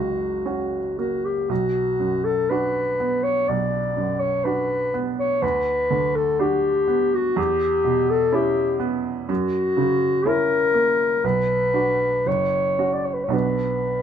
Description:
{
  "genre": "classical, romantic duo for clarinet and grand piano",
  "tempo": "61 BPM",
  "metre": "4/4",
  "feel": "uneven beats, rubato",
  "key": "B minor",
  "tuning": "A4 = 442 Hz",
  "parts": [
    { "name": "mellow clarinet", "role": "melody", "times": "0.0-14.0 s", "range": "F#4 to D5", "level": "-21 LUFS", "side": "left 2 dB", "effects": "none" },
    { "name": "clear baby grand piano", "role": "accompaniment", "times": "0.0-14.0 s", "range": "F#1 to F#4", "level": "-25 LUFS", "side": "right 5 dB", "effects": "none" }
  ],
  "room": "light reverb",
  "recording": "none",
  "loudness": "-19 LUFS",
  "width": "side -8 dB against mid",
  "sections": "0.0-14.0 A section",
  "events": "none",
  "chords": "0.0 F#; 1.5 Bm; 5.4 Bm/D; 7.4 Em6; 9.3 F#7; 11.2 Bm; 12.3 F#5; 13.3 Bm"
}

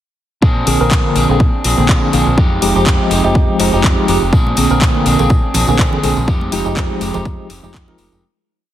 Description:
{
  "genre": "filtered disco house",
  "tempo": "123 BPM",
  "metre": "4/4",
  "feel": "swing 55% on 16ths",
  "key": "F dorian",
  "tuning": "A4 = 444 Hz",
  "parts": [
    { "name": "electric guitar at the edge of break-up", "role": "riff", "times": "0.4-8.2 s", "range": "F3 to Ab4", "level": "-19 LUFS", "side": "equal", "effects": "sidechain pumping" },
    { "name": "deep dub fingered electric bass", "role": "bass", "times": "0.4-8.2 s", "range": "F1 to Bb2", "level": "-18 LUFS", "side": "equal", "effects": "sidechain pumping" },
    { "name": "electronic kick drum", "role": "drums", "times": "0.4-7.8 s", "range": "none", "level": "-13 LUFS", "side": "equal", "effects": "overdrive, studio reverb" },
    { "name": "tine electric piano", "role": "accompaniment", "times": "0.7-8.2 s", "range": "D3 to Bb4", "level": "-17 LUFS", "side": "equal", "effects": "medium stereo tremolo, phaser, vintage 12-bit sampler grit, sidechain pumping" },
    { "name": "house drum kit", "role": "drums", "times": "0.7-8.1 s", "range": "handclaps, hi-hat", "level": "-21 LUFS", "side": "left 1 dB", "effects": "overdrive, sidechain pumping on hats, studio reverb" },
    { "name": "tambourine and congas", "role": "percussion", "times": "4.3-8.2 s", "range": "none", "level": "-26 LUFS", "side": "right 2 dB", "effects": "sidechain pumping on perc" }
  ],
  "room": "little or no reverb",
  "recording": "heavily compressed radio sound",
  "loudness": "-11 LUFS",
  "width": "side -12 dB against mid",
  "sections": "0.4-8.2 drop",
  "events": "drop 0.4-8.2; fade-out 5.6-8.2",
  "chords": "0.4 Bb9; 2.4 Fm9; 4.3 Bb9; 6.3 Fm9"
}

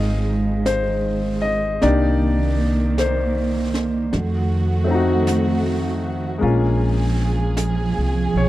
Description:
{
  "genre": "jazz ballad",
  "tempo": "52 BPM",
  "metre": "4/4",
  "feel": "swing 66% on 8ths",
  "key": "F minor",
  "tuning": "A4 = 440 Hz",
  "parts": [
    { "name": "bright upright piano", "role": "accompaniment", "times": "0.0-8.5 s", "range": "Ab3 to F5", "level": "-22 LUFS", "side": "left 3 dB", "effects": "none" },
    { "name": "dark symphonic string section", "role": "sustained chords", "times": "0.0-8.5 s", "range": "Eb3 to Ab4", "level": "-24 LUFS", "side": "right 4 dB", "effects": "none" },
    { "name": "upright bass", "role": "bass", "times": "0.0-8.5 s", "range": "Ab1 to F2", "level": "-21 LUFS", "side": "equal", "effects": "none" },
    { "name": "jazz brush drum kit", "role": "drums", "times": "0.7-8.5 s", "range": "brushed snare drum, hi-hat, snare drum", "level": "-32 LUFS", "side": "right 1 dB", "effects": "none" }
  ],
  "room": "studio ambience",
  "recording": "dry, close 1970s-style studio recording",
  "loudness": "-18 LUFS",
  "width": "side -15 dB against mid",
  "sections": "0.0-8.5 A section",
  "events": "none",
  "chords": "0.0 Fm7; 1.8 Cm9; 4.1 F7b9; 6.4 Bbm9"
}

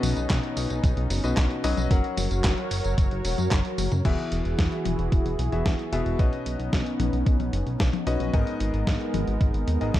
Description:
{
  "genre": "italo disco",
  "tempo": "112 BPM",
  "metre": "4/4",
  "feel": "straight",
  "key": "B major",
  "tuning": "A4 = 440 Hz",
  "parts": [
    { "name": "warm analog pad", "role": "sustained chords", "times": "0.0-10.0 s", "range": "E3 to C#5", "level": "-31 LUFS", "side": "right 1 dB", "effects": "chorus" },
    { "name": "bright concert grand piano", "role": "stabs", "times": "0.0-10.0 s", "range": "G#2 to F#5", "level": "-32 LUFS", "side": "left 4 dB", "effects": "ping-pong delay" },
    { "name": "chorused synth bass", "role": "bass", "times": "0.0-10.0 s", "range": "E1 to F#2", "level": "-27 LUFS", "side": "equal", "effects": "none" },
    { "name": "dusty soul sampler-style drum kit", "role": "drums", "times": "0.0-10.0 s", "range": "crash cymbal, handclaps, hi-hat, snare drum, tambourine, toms", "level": "-30 LUFS", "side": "left 2 dB", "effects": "small room reverb" },
    { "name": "electronic kick drum", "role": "drums", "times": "0.3-10.0 s", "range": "none", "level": "-23 LUFS", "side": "equal", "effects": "small room reverb" }
  ],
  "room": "light reverb",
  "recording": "dark, warm production",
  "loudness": "-22 LUFS",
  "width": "side -14 dB against mid",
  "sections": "0.0-4.0 A section; 4.0-10.0 B section",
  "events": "drum fill 3.8",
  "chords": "0.0 Badd9; 1.9 F#; 4.0 Eadd9; 6.2 Badd9; 8.3 G#madd9"
}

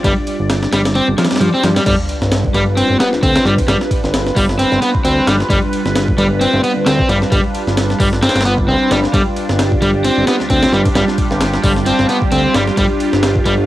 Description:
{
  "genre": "breakbeat, breaks",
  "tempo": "132 BPM",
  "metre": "4/4",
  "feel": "swing 56% on 16ths",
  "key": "unclear",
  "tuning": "A4 = 441 Hz",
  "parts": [
    { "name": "phased analog pad", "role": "sustained chords", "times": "0.0-13.7 s", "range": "G3 to D5", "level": "-19 LUFS", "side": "right 1 dB", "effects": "phaser, chorus, sidechain pumping" },
    { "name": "overdriven semi-hollow guitar", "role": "riff", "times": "0.0-13.5 s", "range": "F3 to C4", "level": "-15 LUFS", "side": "equal", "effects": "tape echo" },
    { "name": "fat analog bass", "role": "bass", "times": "0.0-13.7 s", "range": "G1 to G2", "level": "-18 LUFS", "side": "equal", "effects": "tube saturation" },
    { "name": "breakbeat sampler-style drum kit", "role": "drums", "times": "0.0-13.6 s", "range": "crash cymbal, hi-hat, kick drum, ride cymbal, snare drum", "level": "-18 LUFS", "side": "equal", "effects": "small room ambience, cassette tape" },
    { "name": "swell and sub drop", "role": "sound effects", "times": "1.1-3.7 s", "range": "none", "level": "-26 LUFS", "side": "left 1 dB", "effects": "none" }
  ],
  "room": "moderate studio ambience, RT60 0.5 s",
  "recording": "home recording on cassette",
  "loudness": "-12 LUFS",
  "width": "side -15 dB against mid",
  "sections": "0.0-1.9 A section; 1.9-13.7 B section",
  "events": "swell 1.1-1.9; drop 1.9-13.7; impact 1.9-3.7",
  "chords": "0.0 G7(no3); 1.9 G7"
}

